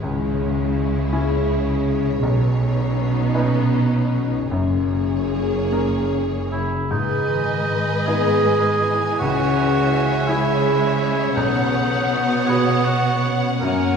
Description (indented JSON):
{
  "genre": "cinematic, emotional film score for orchestra",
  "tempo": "49-56 BPM (dotted quarters)",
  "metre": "6/8",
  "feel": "rubato",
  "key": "unclear",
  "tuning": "A4 = 440 Hz",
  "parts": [
    { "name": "warm studio violin section", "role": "melody", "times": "0.0-14.0 s", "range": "C#5 to G#5", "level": "-34 LUFS", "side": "left 4 dB", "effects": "none" },
    { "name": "warm studio violin section", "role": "second line", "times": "0.0-14.0 s", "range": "D#4 to F#5", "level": "-27 LUFS", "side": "left 1 dB", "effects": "none" },
    { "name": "bright baby grand piano", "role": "accompaniment", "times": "0.0-14.0 s", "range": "B1 to B4", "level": "-27 LUFS", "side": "left 1 dB", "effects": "none" },
    { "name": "rich studio viola section", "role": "accompaniment", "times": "0.0-14.0 s", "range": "E3 to B3", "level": "-28 LUFS", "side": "right 2 dB", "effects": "none" },
    { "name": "concert harp", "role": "arpeggios", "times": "0.0-14.0 s", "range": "F#2 to B4", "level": "-23 LUFS", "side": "left 3 dB", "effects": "none" },
    { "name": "warm studio cello section", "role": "bass", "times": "0.0-14.0 s", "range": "F#2 to C#3", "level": "-24 LUFS", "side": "right 3 dB", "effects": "none" },
    { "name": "warm studio double bass section", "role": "bass", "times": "0.0-6.7 s", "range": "F#1 to C#2", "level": "-27 LUFS", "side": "right 2 dB", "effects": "none" },
    { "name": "warm cor anglais", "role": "melody", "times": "6.5-14.0 s", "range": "D#4 to A#4", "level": "-24 LUFS", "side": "right 3 dB", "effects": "none" }
  ],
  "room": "wet scoring stage reverb, RT60 1.8 s",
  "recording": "heard from further back in the room",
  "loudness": "-17 LUFS",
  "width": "side -6 dB against mid",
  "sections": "0.0-6.9 A section; 6.9-14.0 B section",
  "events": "none",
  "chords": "0.0 C#m; 2.2 Badd9; 4.5 F#add9; 6.9 G#m; 9.2 C#m; 11.4 Badd9",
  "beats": "| 0.03 1.12 | 2.22 3.33 | 4.50 5.71 | 6.91 8.08 | 9.20 10.29 | 11.37 12.48 | 13.62"
}